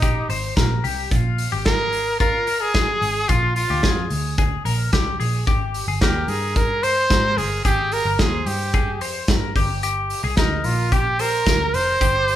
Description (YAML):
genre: jangly indie pop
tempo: 110 BPM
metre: 4/4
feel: straight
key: unclear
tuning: A4 = 441 Hz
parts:
  - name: bright trumpet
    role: melody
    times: 0.0-12.4 s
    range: Eb4 to C5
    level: -21 LUFS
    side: right 1 dB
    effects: none
  - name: twelve-string electric guitar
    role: arpeggios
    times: 0.0-12.4 s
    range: F4 to C5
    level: -26 LUFS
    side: left 6 dB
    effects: none
  - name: vintage muted picked electric bass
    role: bass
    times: 0.0-12.4 s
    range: F1 to Ab2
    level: -25 LUFS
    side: right 1 dB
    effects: none
  - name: loose indie drum kit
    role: drums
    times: 0.0-12.4 s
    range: hi-hat, kick drum, snare drum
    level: -22 LUFS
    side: equal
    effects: none
room: moderate large studio reverb, RT60 0.9 s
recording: band playing live in one room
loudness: -18 LUFS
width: side -12 dB against mid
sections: 0.0-12.4 A section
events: none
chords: 0.0 Cm7; 1.1 Bb7; 5.5 Abmaj7; 9.6 Gm